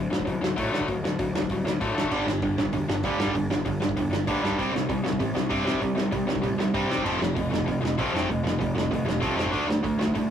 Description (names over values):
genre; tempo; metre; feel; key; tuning
punk rock; 194 BPM; 4/4; straight; unclear; A4 = 441 Hz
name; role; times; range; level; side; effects
distorted electric guitar; riff; 0.0-10.3 s; G2 to D4; -28 LUFS; left 4 dB; overdrive
fuzz picked electric bass; bass; 0.0-10.3 s; E1 to D3; -31 LUFS; right 1 dB; overdrive
loose indie drum kit; drums; 0.1-10.2 s; crash cymbal, hi-hat, kick drum, snare drum; -30 LUFS; equal; none
overdriven electric guitar; riff; 2.1-10.3 s; F2 to D4; -28 LUFS; right 5 dB; none
room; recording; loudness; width
moderate booth ambience, RT60 0.2 s; rough rehearsal-room recording, warm saturation; -23 LUFS; side -9 dB against mid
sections
0.0-10.3 A section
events
none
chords
0.0 D; 2.1 G5; 4.6 C5; 7.0 F; 9.5 D5